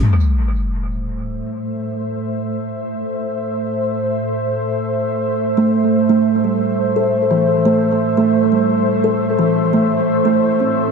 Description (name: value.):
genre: drum and bass.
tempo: 173 BPM.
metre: 4/4.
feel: swing 58% on 16ths, half-time.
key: A minor.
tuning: A4 = 441 Hz.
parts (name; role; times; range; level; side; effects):
bowed-like drone; sustained chords; 0.8-10.9 s; A2 to E5; -18 LUFS; left 1 dB; built-in reverb.
sub drop; sound effects; 0.0-1.4 s; none; -17 LUFS; left 1 dB; none.
kalimba; arpeggios; 5.6-10.8 s; E3 to A4; -17 LUFS; right 3 dB; tape echo.
room: moderate spring reverb, RT60 2.1 s.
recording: echo-heavy mix.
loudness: -15 LUFS.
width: side -5 dB against mid.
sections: 0.0-10.9 A section.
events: impact 0.0-1.4; filter sweep on synth drone 0.0-10.9.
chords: 0.0 Am.